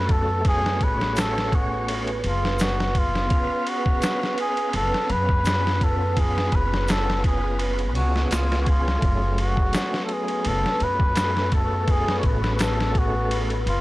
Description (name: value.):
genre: trip hop.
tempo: 84 BPM.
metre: 4/4.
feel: swing 54% on 16ths.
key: F# harmonic minor.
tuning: A4 = 439 Hz.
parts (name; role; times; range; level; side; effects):
trumpet with cup mute; melody; 0.0-13.8 s; E#4 to C#5; -26 LUFS; equal; tape echo.
overdriven tonewheel organ; accompaniment; 0.0-13.6 s; F#3 to E#5; -30 LUFS; equal; chorus vibrato, fast rotary speaker, tremolo, tape echo.
deep dark ambient pad; sustained chords; 0.2-13.8 s; B4; -32 LUFS; equal; chorus, built-in reverb.
upright bass; bass; 0.0-13.8 s; F#1 to F#2; -25 LUFS; equal; none.
bowed-like drone; texture; 0.8-13.8 s; G#4; -40 LUFS; equal; none.
trip hop sampler-style drum kit; drums; 0.1-13.8 s; kick drum, ride cymbal, snare drum; -24 LUFS; equal; none.
tube shaker; percussion; 1.2-12.7 s; none; -40 LUFS; left 2 dB; none.
room: digital ambience.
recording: dry, gritty hardware recording, transformer saturation, cassette tape.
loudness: -20 LUFS.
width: side -18 dB against mid.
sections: 0.0-13.8 A section.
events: none.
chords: 0.0 F#madd9; 3.3 C#7/F#; 9.0 F#madd9.